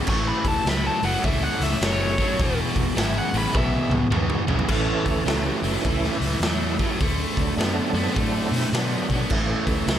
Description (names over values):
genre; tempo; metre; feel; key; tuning
blues rock power trio and southern rock; 104 BPM; 4/4; swing 63% on 8ths; A major; A4 = 440 Hz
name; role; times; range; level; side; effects
overdriven tonewheel organ; sustained chords; 0.0-10.0 s; E3 to A4; -30 LUFS; right 4 dB; slow rotary speaker, chorus vibrato
biting overdriven guitar; riff; 0.0-10.0 s; E2 to B3; -26 LUFS; left 1 dB; none
bluesy overdriven lead guitar; melody; 0.1-3.9 s; C#5 to C#6; -27 LUFS; left 1 dB; distortion
vintage muted fingered electric bass; bass; 0.1-10.0 s; E1 to B2; -27 LUFS; equal; none
raw garage drum kit; drums; 0.1-10.0 s; crash cymbal, hi-hat, kick drum, snare drum, toms; -25 LUFS; equal; none
room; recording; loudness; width
light reverb; none; -20 LUFS; side -10 dB against mid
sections
0.0-4.7 A section; 4.7-10.0 A section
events
lead electric guitar solo 0.0-4.7; drum fill 3.5-4.7; tonewheel organ solo 4.7-10.0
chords
0.1 A; 2.4 E; 4.7 A; 7.0 D; 9.3 A